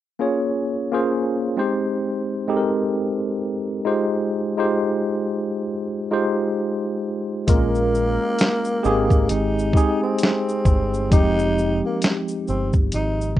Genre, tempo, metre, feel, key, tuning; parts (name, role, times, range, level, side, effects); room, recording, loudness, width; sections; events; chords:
lo-fi hip hop; 66 BPM; 4/4; swing 60% on 16ths; A4 = 442 Hz
barky tine electric piano; accompaniment; 0.2-13.4 s; F3 to Db5; -21 LUFS; equal; medium stereo tremolo
growling tenor saxophone; melody; 7.5-13.4 s; Bb3 to Eb4; -25 LUFS; equal
deep dub picked electric bass; bass; 7.5-13.4 s; F1 to Bb1; -24 LUFS; equal
lo-fi sampler-style drum kit; drums; 7.5-13.4 s; hi-hat, kick drum, shaker, snare drum; -18 LUFS; equal; vintage 12-bit sampler grit
light reverb; rough home demo mix, nothing above 10.9 kHz; -19 LUFS; side -13 dB against mid
0.2-7.5 A section; 7.5-13.4 B section
0.2 Bbm7; 1.6 Abmaj7; 3.8 Fm9; 7.5 Bbm7; 8.8 Abmaj7; 11.1 Fm9